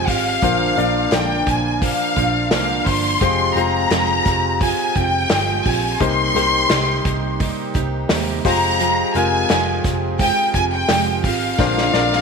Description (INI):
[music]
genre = piano-driven pop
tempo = 86 BPM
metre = 4/4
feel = swing 56% on 16ths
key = unclear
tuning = A4 = 444 Hz
[part]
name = clear symphonic violin section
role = melody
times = 0.0-12.2 s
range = F5 to C6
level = -19 LUFS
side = left 1 dB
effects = slapback echo
[part]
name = clear upright piano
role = accompaniment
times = 0.0-12.2 s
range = Bb2 to D5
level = -24 LUFS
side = left 11 dB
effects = none
[part]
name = picked steel-string acoustic guitar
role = riff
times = 0.0-12.2 s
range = Bb2 to C5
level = -24 LUFS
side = right 13 dB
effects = none
[part]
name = vintage muted picked electric bass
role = bass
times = 0.0-12.2 s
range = F1 to Eb2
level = -25 LUFS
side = right 1 dB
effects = none
[part]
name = unplugged drum kit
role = drums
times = 0.1-12.2 s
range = hi-hat, kick drum, snare drum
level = -22 LUFS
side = equal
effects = none
[part]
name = group handclap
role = percussion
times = 1.1-11.1 s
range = none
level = -34 LUFS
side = left 13 dB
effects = none
[sound]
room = moderate echo chamber reverb, RT60 2.2 s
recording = 1960s-style stereo with parts hard left and right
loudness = -16 LUFS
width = side -5 dB against mid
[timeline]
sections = 0.0-12.2 A section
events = drum fill 11.6-12.2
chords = 0.4 Bbadd9; 3.2 Fmadd9; 6.0 Cm7; 8.5 Fmadd9; 11.6 Bbadd9